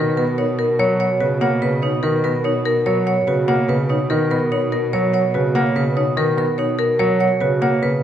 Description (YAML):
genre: classical, minimalist pattern music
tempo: 145 BPM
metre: 5/4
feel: straight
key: B major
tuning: A4 = 440 Hz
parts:
  - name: marimba with medium hard mallets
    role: melody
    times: 0.0-8.0 s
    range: A#4 to F#5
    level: -22 LUFS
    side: left 7 dB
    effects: none
  - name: warm grand piano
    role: accompaniment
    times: 0.0-8.0 s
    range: C#3 to B3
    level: -21 LUFS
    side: right 1 dB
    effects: none
  - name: vibraphone with medium hard mallets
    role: arpeggios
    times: 0.0-8.0 s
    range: D#4 to C#5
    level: -22 LUFS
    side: right 6 dB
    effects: none
  - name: rich cello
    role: bass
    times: 0.0-8.0 s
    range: B2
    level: -25 LUFS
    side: right 2 dB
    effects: none
room: wet recital hall reverb, RT60 1.5 s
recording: none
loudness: -16 LUFS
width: side -10 dB against mid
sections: 0.0-8.0 A section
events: none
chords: 0.0 Bmaj7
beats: 0.38 | 0.79 1.21 1.62 2.04 2.45 | 2.86 3.28 3.69 4.11 4.52 | 4.93 5.35 5.76 6.17 6.59 | 7.00 7.42 7.83